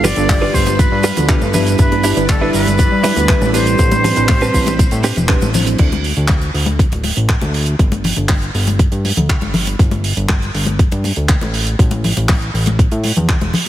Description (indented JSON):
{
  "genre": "nu-disco, nu disco",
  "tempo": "120 BPM",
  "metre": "4/4",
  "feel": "straight",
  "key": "D dorian",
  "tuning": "A4 = 440 Hz",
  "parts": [
    { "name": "bright concert flute", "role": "melody", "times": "0.0-5.3 s", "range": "A4 to D5", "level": "-20 LUFS", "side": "equal", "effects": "tape echo" },
    { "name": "mellow tine electric piano", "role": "accompaniment", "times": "0.0-5.9 s", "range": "F3 to C5", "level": "-21 LUFS", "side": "right 2 dB", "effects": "medium stereo tremolo" },
    { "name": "string machine, full ensemble", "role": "sustained chords", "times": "0.0-5.8 s", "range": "G3 to B5", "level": "-23 LUFS", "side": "equal", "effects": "ensemble chorus, sidechain pumping" },
    { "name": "direct-recorded clean electric guitar", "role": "riff", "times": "0.0-5.7 s", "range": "C4 to B4", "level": "-20 LUFS", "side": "right 3 dB", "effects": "lush chorus" },
    { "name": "fat analog bass", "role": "bass", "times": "0.0-13.5 s", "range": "D1 to A2", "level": "-18 LUFS", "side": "equal", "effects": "none" },
    { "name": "damped 70s drum kit", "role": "drums", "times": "0.0-13.6 s", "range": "crash cymbal, handclaps, hi-hat, shaker", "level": "-21 LUFS", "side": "right 2 dB", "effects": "none" },
    { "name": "congas", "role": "percussion", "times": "0.0-13.7 s", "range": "none", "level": "-22 LUFS", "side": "left 3 dB", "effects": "none" },
    { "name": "electronic kick drum", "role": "drums", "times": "0.3-13.4 s", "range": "none", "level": "-14 LUFS", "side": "equal", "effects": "none" }
  ],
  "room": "light reverb, small room ambience",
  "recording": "heavily compressed radio sound, multiband compression",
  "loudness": "-12 LUFS",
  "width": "side -13 dB against mid",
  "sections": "0.0-5.8 A section; 5.8-13.7 B section",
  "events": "drop 0.0-5.8",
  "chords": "0.0 G7; 1.5 Em7/G; 3.5 Am11; 5.8 D5; 7.8 G5; 9.5 Gsus2; 11.5 A5"
}